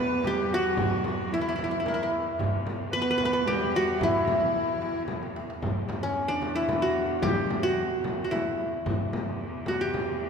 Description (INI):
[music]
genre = Arabic maqam ensemble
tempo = 112 BPM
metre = 3/4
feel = straight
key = E minor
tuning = A4 = 445 Hz
[part]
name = qanun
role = melody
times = 0.0-10.3 s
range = C#4 to B4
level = -28 LUFS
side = equal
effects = none
[part]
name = accordion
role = second line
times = 0.0-5.0 s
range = E4 to B4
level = -32 LUFS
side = equal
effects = light tremolo tuning
[part]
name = dark cello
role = second line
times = 0.0-5.1 s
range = E3 to B3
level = -33 LUFS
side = right 3 dB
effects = none
[part]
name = bright cello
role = drone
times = 0.0-10.3 s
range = E2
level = -37 LUFS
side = equal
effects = none
[part]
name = frame drum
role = percussion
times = 0.2-10.1 s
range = none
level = -33 LUFS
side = left 2 dB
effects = none
[part]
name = darbuka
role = percussion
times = 0.3-10.3 s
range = none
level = -37 LUFS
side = right 2 dB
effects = none
[sound]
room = wet church reverb, RT60 2.9 s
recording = recorded in a church or concert hall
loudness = -25 LUFS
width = side -6 dB against mid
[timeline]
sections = 0.0-5.6 A section; 5.6-10.3 B section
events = drum fill 5.1-5.6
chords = none